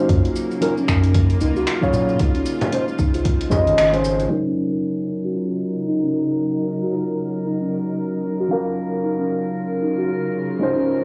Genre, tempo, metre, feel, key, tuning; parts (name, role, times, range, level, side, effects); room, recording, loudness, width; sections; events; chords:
organic downtempo; 114 BPM; 4/4; swing 59% on 16ths; Eb dorian; A4 = 440 Hz
mellow tine electric piano; accompaniment; 0.0-11.0 s; Gb3 to F5; -25 LUFS; equal; sidechain pumping, cassette tape, analog delay
bowed-like drone; sustained chords; 0.0-11.0 s; Db3 to C5; -29 LUFS; equal; built-in reverb, sidechain pumping, cassette tape
steel tongue drum; arpeggios; 0.0-11.0 s; Db4 to Eb5; -27 LUFS; equal; low-pass filter, cassette tape, analog delay
round analog bass; bass; 0.1-4.3 s; Ab1 to Bb2; -23 LUFS; equal
deep house drum kit; drums; 0.1-4.3 s; finger snaps, hi-hat, shaker; -31 LUFS; equal; overdrive, cassette tape
electronic kick drum; drums; 0.1-3.6 s; -23 LUFS; equal; overdrive, cassette tape
frame drum; percussion; 2.6-3.6 s; -27 LUFS; equal
drifting glass-harmonics texture; texture; 5.7-11.0 s; Bb4; -35 LUFS; equal; chorus, built-in reverb, cassette tape
light reverb; home recording on cassette, low-pass filter, studio ambience; -21 LUFS; mono
0.0-4.3 A section; 4.3-11.0 B section
band accent 3.8; filter sweep on steel tongue drum 4.3-11.0; filter sweep on synth drone 4.3-11.0; filter sweep 4.3-11.0
0.1 Gbmaj7; 2.2 Dbmaj7; 4.3 Ebm7